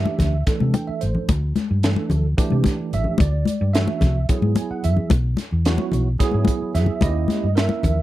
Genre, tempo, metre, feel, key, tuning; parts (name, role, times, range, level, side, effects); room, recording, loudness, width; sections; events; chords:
electric jazz fusion; 220 BPM (eighths); 7/8; straight; A4 = 440 Hz
bright tine electric piano; accompaniment; 0.0-8.0 s; E3 to G#5; -25 LUFS; right 6 dB; medium stereo tremolo, ensemble chorus
hollow-body short-scale fingered electric bass; bass; 0.0-8.0 s; A1 to C3; -20 LUFS; equal
congas; percussion; 0.1-8.0 s; -24 LUFS; left 4 dB
crisp fusion drum kit; drums; 0.2-8.0 s; hi-hat, kick drum, snare drum; -22 LUFS; equal
little or no reverb; -18 LUFS; side -15 dB against mid
0.0-8.0 A section
tine electric piano fill 0.5-1.3, 4.3-5.1
0.0 D9sus4; 4.3 Bsus4; 7.0 D#7b9